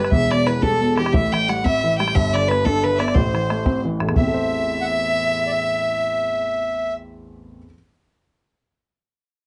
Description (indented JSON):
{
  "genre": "celtic folk, Celtic jig",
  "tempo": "119 BPM (dotted quarters)",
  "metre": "6/8",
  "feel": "straight",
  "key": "A minor",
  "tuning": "A4 = 438 Hz",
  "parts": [
    { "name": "clear fiddle", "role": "melody", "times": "0.0-6.9 s", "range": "G4 to G5", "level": "-25 LUFS", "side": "equal", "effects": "none" },
    { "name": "accordion", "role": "second line", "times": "0.0-6.9 s", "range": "G4 to G5", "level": "-26 LUFS", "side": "equal", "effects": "none" },
    { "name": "dark upright piano", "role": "accompaniment", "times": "0.0-7.7 s", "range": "E1 to C5", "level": "-25 LUFS", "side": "equal", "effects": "none" },
    { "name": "bodhran", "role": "percussion", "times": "0.0-4.3 s", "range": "none", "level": "-24 LUFS", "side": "equal", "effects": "none" }
  ],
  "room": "moderate studio reverb, RT60 0.5 s",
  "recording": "nothing above 10.6 kHz",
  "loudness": "-20 LUFS",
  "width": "mono",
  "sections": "0.0-4.2 A section; 4.2-6.2 B section",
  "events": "none",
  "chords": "0.1 Em; 1.1 Am7; 2.1 G; 3.2 Am"
}